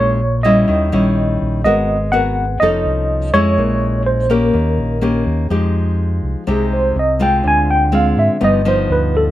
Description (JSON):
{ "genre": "bossa nova", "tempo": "124 BPM", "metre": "4/4", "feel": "straight", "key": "F minor from 5.5 s", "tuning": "A4 = 441 Hz", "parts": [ { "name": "tine electric piano", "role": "melody", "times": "0.0-9.3 s", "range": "Ab4 to Ab5", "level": "-17 LUFS", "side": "right 1 dB", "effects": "medium tremolo" }, { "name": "nylon-string guitar", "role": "accompaniment", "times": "0.0-9.3 s", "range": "G2 to A#4", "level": "-17 LUFS", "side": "left 2 dB", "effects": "none" }, { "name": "fingered electric bass", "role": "bass", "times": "0.0-9.3 s", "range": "F1 to Ab2", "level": "-19 LUFS", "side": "right 1 dB", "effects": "none" } ], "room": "light reverb", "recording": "none", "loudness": "-13 LUFS", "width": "side -14 dB against mid", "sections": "0.0-5.5 A section; 5.5-9.3 B section", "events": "tine electric piano solo 5.5-9.3", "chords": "0.0 A#m7b5; 0.7 D#7b9; 1.6 G#m9; 2.6 F7b13; 3.6 A#m7b5; 4.5 D#7; 5.5 Fm9; 7.4 Dm7b5; 8.4 G7b13", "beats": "0.19 0.67 1.16 | 1.64 2.12 2.60 3.09 | 3.57 4.05 4.54 5.02 | 5.50 5.99 6.47 6.95 | 7.44 7.92 8.40 8.89" }